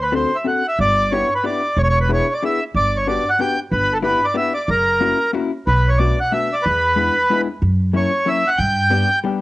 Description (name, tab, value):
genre	musette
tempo	185 BPM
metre	3/4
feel	straight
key	unclear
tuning	A4 = 440 Hz
part	accordion	melody	0.0-9.2 s	A4 to G5	-17 LUFS	right 1 dB	none
part	upright bass	bass	0.0-9.0 s	E1 to G2	-20 LUFS	right 1 dB	tube saturation
part	hollow-body jazz guitar	accompaniment	0.1-9.4 s	F#3 to A4	-22 LUFS	left 5 dB	cassette tape
room	light reverb, studio reverb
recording	home recording on cassette, nothing above 10.7 kHz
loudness	-15 LUFS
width	side -18 dB against mid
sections	0.0-9.4 A section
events	none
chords	0.0 D7; 0.8 G6; 1.8 E7; 2.7 Gmaj7; 3.7 Em7/G; 4.7 F#7; 5.7 Bm7; 6.7 E7; 7.6 F#7; 8.6 G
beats	0.14 0.46 | 0.78 1.11 1.44 | 1.77 2.10 2.42 | 2.75 3.07 3.39 | 3.71 4.04 4.36 | 4.68 5.01 5.34 | 5.67 6.00 6.33 | 6.66 6.98 7.30 | 7.63 7.95 8.27 | 8.59 8.92 9.24